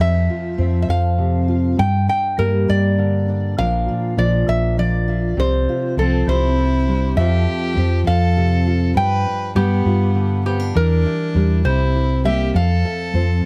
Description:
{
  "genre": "folk",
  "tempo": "67 BPM (dotted quarters)",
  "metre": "6/8",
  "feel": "straight",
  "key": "F major",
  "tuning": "A4 = 440 Hz",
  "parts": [
    { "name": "lap resonator guitar", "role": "melody", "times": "0.0-13.5 s", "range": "G4 to G5", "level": "-25 LUFS", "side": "equal", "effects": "tape echo" },
    { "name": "fingerpicked steel-string acoustic guitar", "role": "accompaniment", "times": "0.0-13.5 s", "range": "F2 to Bb4", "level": "-24 LUFS", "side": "equal", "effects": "none" },
    { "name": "hollow-body short-scale fingered electric bass", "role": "bass", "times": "0.0-13.4 s", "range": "Bb1 to G2", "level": "-20 LUFS", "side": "equal", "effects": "none" },
    { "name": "warm fiddle", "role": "second line", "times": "6.0-13.5 s", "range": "B3 to B4", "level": "-29 LUFS", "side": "equal", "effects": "none" }
  ],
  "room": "light reverb",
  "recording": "close, detailed microphones",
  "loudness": "-18 LUFS",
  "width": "mono",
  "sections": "0.0-13.5 A section",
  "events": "none",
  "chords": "0.0 Fmaj7; 1.8 Gm; 3.6 Bb; 5.4 F5/C; 6.3 Cadd9; 7.2 Fadd9; 9.0 G7; 10.8 Em7b5; 11.6 C7; 12.5 F",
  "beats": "0.89 | 1.78 2.68 | 3.58 4.47 | 5.37 6.27 | 7.16 8.06 | 8.96 9.85 | 10.75 11.65 | 12.54 13.44"
}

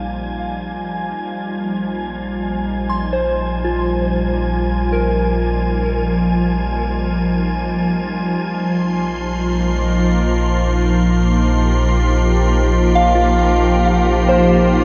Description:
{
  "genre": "ambient",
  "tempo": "67 BPM",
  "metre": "4/4",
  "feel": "straight",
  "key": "unclear",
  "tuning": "A4 = 443 Hz",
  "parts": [
    { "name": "soft additive organ-like pad", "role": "sustained chords", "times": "0.0-14.8 s", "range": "F3 to G4", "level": "-21 LUFS", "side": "equal", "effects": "ensemble chorus, built-in reverb" },
    { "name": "soft synth bell", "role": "arpeggios", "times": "0.0-14.8 s", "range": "F4 to C6", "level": "-23 LUFS", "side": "equal", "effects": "chorus, phaser, diffuse ambient delay" },
    { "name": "round analog bass", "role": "bass", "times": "0.0-14.8 s", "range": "Bb1", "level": "-22 LUFS", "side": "equal", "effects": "none" },
    { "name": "wind-like tuned noise texture", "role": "texture", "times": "0.0-14.8 s", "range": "Ab5 to C7", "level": "-30 LUFS", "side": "equal", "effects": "built-in reverb" }
  ],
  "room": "wet cathedral reverb, RT60 6.7 s",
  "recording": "dark, warm production",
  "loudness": "-17 LUFS",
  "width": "mono",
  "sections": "0.0-14.8 A section",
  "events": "fade-in on ambient pad 0.0-14.8; fade-in on synth bell 0.0-14.8; fade-in on analog synth bass 0.0-14.8; fade-in on synth texture 0.0-14.8",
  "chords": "0.0 Bb7sus4; 1.2 Ab6/Bb",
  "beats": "0.28 | 1.18 2.08 2.98 3.87 | 4.77 5.68 6.58 7.51 | 8.43 9.34 10.24 11.14 | 12.03 12.93 13.82 14.72"
}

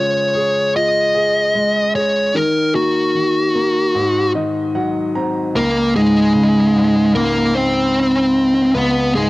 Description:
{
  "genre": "pop",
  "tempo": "75 BPM",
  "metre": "4/4",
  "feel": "straight",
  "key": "unclear",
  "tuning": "A4 = 440 Hz",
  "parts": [
    { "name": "fuzz lead guitar", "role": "melody", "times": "0.0-9.3 s", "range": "Ab3 to Eb5", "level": "-14 LUFS", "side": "equal", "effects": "distortion, cassette tape" },
    { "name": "clear grand piano", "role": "accompaniment", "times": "0.0-9.3 s", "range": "Db2 to Bb5", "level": "-20 LUFS", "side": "left 1 dB", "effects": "cassette tape" }
  ],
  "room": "light reverb, studio ambience",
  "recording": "home recording on cassette",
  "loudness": "-14 LUFS",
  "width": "side -19 dB against mid",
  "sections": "0.0-5.5 A section; 5.5-9.3 B section",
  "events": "grand piano fill 3.9-5.5",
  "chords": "0.0 Db; 2.3 Ebm; 3.9 Ab7; 5.5 Abadd9/Db",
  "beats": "0.75 1.55 | 2.35 3.15 3.95 4.75 | 5.55 6.35 7.15 7.95 | 8.75"
}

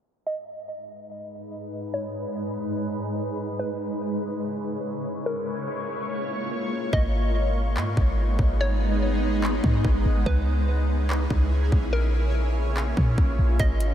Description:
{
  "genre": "hip hop, atmospheric cloud-rap",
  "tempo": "144 BPM",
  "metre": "4/4",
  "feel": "half-time",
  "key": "G# minor",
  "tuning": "A4 = 440 Hz",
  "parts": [
    { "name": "hollow square pluck", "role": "melody", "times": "0.3-13.9 s", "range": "A#4 to D#5", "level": "-34 LUFS", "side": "equal", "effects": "chorus, low-pass filter, tape echo" },
    { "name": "shimmering ambient pad", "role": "sustained chords", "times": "1.1-13.9 s", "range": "G#2 to C#5", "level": "-28 LUFS", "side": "equal", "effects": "chorus, built-in reverb, phaser, sidechain pumping" },
    { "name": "clean 808-style bass", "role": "bass", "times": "6.9-13.9 s", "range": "G#1 to A#2", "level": "-23 LUFS", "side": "equal", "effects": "none" },
    { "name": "trap drum kit", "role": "drums", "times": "6.9-13.9 s", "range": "handclaps, hi-hat, kick drum", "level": "-26 LUFS", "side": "equal", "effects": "none" }
  ],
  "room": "moderate huge ambient reverb, RT60 7.6 s",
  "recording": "dreamy mix soaked in reverb, low-pass filter",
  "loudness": "-22 LUFS",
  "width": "side -10 dB against mid",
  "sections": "0.3-6.9 A section; 6.9-13.9 B section",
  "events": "filter sweep 0.3-6.9; hi-hats muted 6.9-13.6",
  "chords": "0.3 G#m; 3.6 C#m; 5.3 A#m; 6.9 G#m; 10.3 C#m; 11.9 A#m",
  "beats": "| 0.26 0.68 1.10 1.51 | 1.93 2.35 2.76 3.18 | 3.60 4.01 4.43 4.85 | 5.26 5.68 6.10 6.51 | 6.93 7.35 7.76 8.18 | 8.60 9.01 9.43 9.85 | 10.26 10.68 11.10 11.51 | 11.93 12.35 12.76 13.18 | 13.60"
}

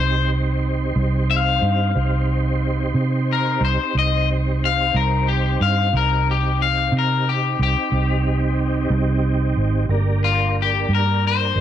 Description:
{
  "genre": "slow blues",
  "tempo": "60 BPM (dotted quarters)",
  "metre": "12/8",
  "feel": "straight",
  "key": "unclear",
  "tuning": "A4 = 440 Hz",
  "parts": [
    { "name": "electric guitar at the edge of break-up", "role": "melody", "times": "0.0-11.6 s", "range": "F4 to F5", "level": "-21 LUFS", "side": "left 10 dB", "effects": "none" },
    { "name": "tonewheel organ", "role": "sustained chords", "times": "0.0-11.6 s", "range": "Bb3 to C5", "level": "-26 LUFS", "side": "right 3 dB", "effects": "chorus vibrato, fast rotary speaker" },
    { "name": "vintage muted fingered electric bass", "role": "bass", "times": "0.0-11.6 s", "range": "G1 to C3", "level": "-20 LUFS", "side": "right 2 dB", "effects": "none" }
  ],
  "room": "light reverb",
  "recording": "none",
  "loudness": "-17 LUFS",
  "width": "side -10 dB against mid",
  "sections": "0.0-11.6 A section",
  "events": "none",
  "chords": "0.0 Cm; 9.9 Gm",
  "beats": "0.96 | 1.96 2.95 3.94 4.94 | 5.93 6.92 7.92 8.91 | 9.90 10.89"
}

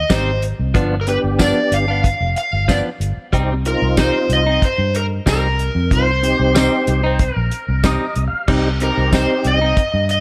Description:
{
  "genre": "straight-eighth soul blues",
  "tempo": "93 BPM",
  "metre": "4/4",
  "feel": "straight",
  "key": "C minor",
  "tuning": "A4 = 439 Hz",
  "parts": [
    { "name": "overdriven slide guitar", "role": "melody", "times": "0.0-10.2 s", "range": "Bb4 to F5", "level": "-22 LUFS", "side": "equal", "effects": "none" },
    { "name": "vintage muted fingered electric bass", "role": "bass", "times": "0.0-10.2 s", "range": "F1 to G2", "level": "-22 LUFS", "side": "equal", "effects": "none" },
    { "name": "direct-recorded clean electric guitar", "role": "stabs", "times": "0.1-9.8 s", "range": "F3 to Eb4", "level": "-26 LUFS", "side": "equal", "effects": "none" },
    { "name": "cloth-damped thuddy drum kit", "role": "drums", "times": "0.1-10.2 s", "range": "crash cymbal, hi-hat, kick drum, snare drum, tambourine", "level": "-21 LUFS", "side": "equal", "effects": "none" },
    { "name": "tonewheel organ", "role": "accompaniment", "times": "0.7-9.6 s", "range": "B3 to F5", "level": "-24 LUFS", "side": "equal", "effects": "slow rotary speaker, overdrive, chorus vibrato" }
  ],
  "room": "light reverb",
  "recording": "none",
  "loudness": "-17 LUFS",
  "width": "mono",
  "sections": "0.0-8.5 A section; 8.5-10.2 A section",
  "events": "tonewheel organ fill 7.5-8.5",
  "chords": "0.0 Abmaj7; 0.7 G7; 3.3 Cm",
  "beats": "0.10 | 0.75 1.39 2.04 2.68 | 3.33 3.98 4.62 5.26 | 5.91 6.55 7.20 7.84 | 8.49 9.13 9.77"
}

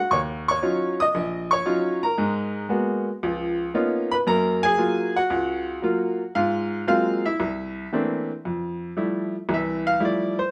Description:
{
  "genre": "solo jazz",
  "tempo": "115 BPM",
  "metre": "4/4",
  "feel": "swing 69% on 8ths",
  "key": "unclear",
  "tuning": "A4 = 436 Hz",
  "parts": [
    { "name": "bright upright piano", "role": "solo", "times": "0.0-10.5 s", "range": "Bb1 to Eb6", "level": "-24 LUFS", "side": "equal", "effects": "none" }
  ],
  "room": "light reverb",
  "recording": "none",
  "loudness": "-24 LUFS",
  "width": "mono",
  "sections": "0.0-8.4 A section; 8.4-10.5 B section",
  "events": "upright piano solo 8.4-10.5",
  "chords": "0.1 Ebm9; 2.2 Abm9; 3.2 Db13; 4.3 Gbmaj7; 6.4 Ab13; 7.4 C13; 8.4 Fmaj9",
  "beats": "| 0.11 0.63 1.15 1.67 | 2.19 2.71 3.23 3.75 | 4.27 4.79 5.31 5.83 | 6.36 6.88 7.40 7.92 | 8.44 8.96 9.48 10.01"
}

